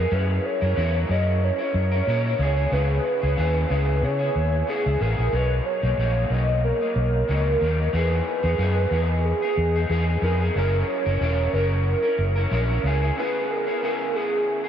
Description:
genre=indie pop, bedroom pop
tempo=92 BPM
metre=4/4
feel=swing 55% on 16ths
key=unclear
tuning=A4 = 441 Hz
part: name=warbly nostalgic lead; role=melody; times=0.0-14.7 s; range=G#4 to D#5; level=-25 LUFS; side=right 1 dB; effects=tremolo, analog chorus, diffuse ambient delay
part: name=electric guitar through a small old amp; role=accompaniment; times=0.0-14.7 s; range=B2 to A#4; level=-28 LUFS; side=left 1 dB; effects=analog chorus, vibrato effect
part: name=fingered electric bass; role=bass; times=0.0-13.1 s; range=E1 to C#3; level=-22 LUFS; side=equal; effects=none
room=moderate huge ambient reverb, RT60 8.3 s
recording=dreamy mix soaked in reverb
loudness=-20 LUFS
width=side -9 dB against mid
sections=0.0-14.7 A section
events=break 13.2-14.7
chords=0.1 F#7; 2.4 C#m7; 5.3 Bmaj7; 7.9 Emaj7; 10.5 F#7; 12.8 C#m7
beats=| 0.11 0.76 1.42 2.07 | 2.72 3.37 4.02 4.67 | 5.33 5.98 6.63 7.28 | 7.94 8.59 9.24 9.90 | 10.55 11.20 11.86 12.51 | 13.16 13.82 14.47

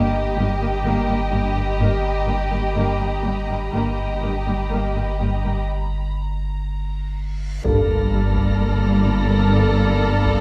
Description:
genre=cinematic, suspense film score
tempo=62 BPM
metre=4/4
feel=straight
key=unclear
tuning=A4 = 440 Hz
part: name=muted symphonic violin section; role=melody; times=0.0-10.4 s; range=D5 to Eb5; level=-32 LUFS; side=equal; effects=none
part: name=muted symphonic violin section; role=second line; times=0.0-10.4 s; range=G4 to A4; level=-29 LUFS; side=equal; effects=none
part: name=muted symphonic viola section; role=accompaniment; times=0.0-10.4 s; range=Bb3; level=-30 LUFS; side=equal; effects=none
part: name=muted studio cello section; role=riff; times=0.0-10.3 s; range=G2 to G3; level=-31 LUFS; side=equal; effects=none
part: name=warm sub bass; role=drone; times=0.0-10.4 s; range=G1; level=-27 LUFS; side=equal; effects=none
part: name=muted studio violin section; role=texture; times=0.0-10.4 s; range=Bb5 to Bb6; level=-37 LUFS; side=equal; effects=none
part: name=muted studio double bass section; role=bass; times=0.4-10.4 s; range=G1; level=-27 LUFS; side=equal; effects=none
part: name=muted symphonic cello section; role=bass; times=0.4-10.4 s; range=G2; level=-28 LUFS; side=equal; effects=none
part: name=reverse cymbal and sub drop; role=sound effects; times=7.5-10.4 s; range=none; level=-30 LUFS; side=equal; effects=none
part: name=mellow French horn section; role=sustained chords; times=7.6-9.9 s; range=Bb3 to A4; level=-28 LUFS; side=equal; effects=none
part: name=taiko ensemble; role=drums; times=7.7-10.4 s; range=none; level=-28 LUFS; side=equal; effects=none
room=moderate scoring stage reverb, RT60 2.0 s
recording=none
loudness=-21 LUFS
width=mono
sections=0.0-7.6 A section; 7.6-10.4 B section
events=break 5.7-7.6; reverse cymbal 7.5; impact 7.6-10.4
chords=0.0 Eb/G; 7.6 Gmadd9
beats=0.86 1.80 2.76 | 3.73 4.71 5.69 6.67 | 7.64 8.60 9.55

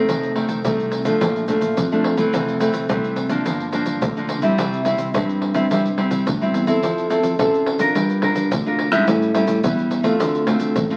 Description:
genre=samba and choro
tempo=107 BPM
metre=4/4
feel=straight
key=F major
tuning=A4 = 440 Hz
part: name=nylon-string guitar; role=accompaniment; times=0.0-11.0 s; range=F2 to Bb4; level=-22 LUFS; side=equal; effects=none
part: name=modern bright fingered electric bass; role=bass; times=0.0-11.0 s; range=F1 to A2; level=-26 LUFS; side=equal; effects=none
part: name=egg shaker, surdo and pandeiro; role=percussion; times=0.1-11.0 s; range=none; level=-28 LUFS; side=equal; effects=none
room=wet studio reverb, RT60 0.8 s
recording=very old 78 rpm record, vinyl crackle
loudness=-20 LUFS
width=mono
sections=0.0-11.0 A section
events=none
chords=0.1 F7; 1.2 Bbmaj7; 2.3 Fmaj7; 3.5 Gm7; 4.6 C; 6.8 Fmaj7; 8.0 Gm7; 9.1 A7; 10.2 Dm7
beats=| 0.09 0.65 1.21 1.77 | 2.33 2.90 3.46 4.02 | 4.58 5.14 5.71 6.27 | 6.83 7.39 7.95 8.51 | 9.07 9.64 10.20 10.76

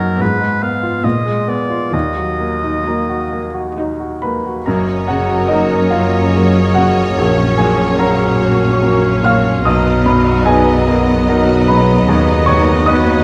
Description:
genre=classical, romantic movement for piano and orchestra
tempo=64-76 BPM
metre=3/4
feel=rubato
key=Eb minor, F# major from 4.7 s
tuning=A4 = 438 Hz
part: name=clear baby grand piano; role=melody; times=0.0-13.2 s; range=A#1 to E#6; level=-18 LUFS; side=equal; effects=none
part: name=clear oboe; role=second line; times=0.0-13.2 s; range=Bb4 to F5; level=-25 LUFS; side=equal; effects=none
part: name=rich symphonic cello section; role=bass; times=0.0-13.2 s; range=D#2 to Eb3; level=-23 LUFS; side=equal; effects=none
part: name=rich symphonic viola section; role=accompaniment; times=0.2-13.2 s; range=F3 to Eb4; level=-25 LUFS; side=equal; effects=none
part: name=dark French horn section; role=sustained chords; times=4.6-13.2 s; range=A#3 to D#4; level=-25 LUFS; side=equal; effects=none
part: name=rich symphonic violin section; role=melody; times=4.7-13.2 s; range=C#5 to D#5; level=-28 LUFS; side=equal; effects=none
part: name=rich symphonic violin section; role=second line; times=4.7-13.2 s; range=A#3 to A#4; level=-28 LUFS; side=equal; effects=none
part: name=small flute group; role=second line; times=4.7-13.2 s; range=A#5 to C#6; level=-29 LUFS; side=equal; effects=none
part: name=warm clarinet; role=second line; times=4.7-13.2 s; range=F#4 to B4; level=-25 LUFS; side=equal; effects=none
part: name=warm trombone section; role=sustained chords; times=4.7-13.2 s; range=F#2 to F#3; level=-24 LUFS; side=equal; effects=none
part: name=clear symphonic double bass section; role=bass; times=4.7-13.2 s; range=F#1 to D#2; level=-23 LUFS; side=equal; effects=none
room=wet recital hall reverb, RT60 1.6 s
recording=none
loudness=-14 LUFS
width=mono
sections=0.0-4.7 A section; 4.7-13.2 B section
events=none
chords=0.2 Fdim/Ab; 1.0 Bb7b9; 1.9 Ebm; 4.7 F#; 7.2 F#/A#; 9.6 Bmaj7; 12.1 B/D#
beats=0.21 1.04 | 1.93 2.85 3.77 | 4.66 5.50 6.33 | 7.17 7.99 8.83 | 9.65 10.46 11.28 | 12.08 12.88

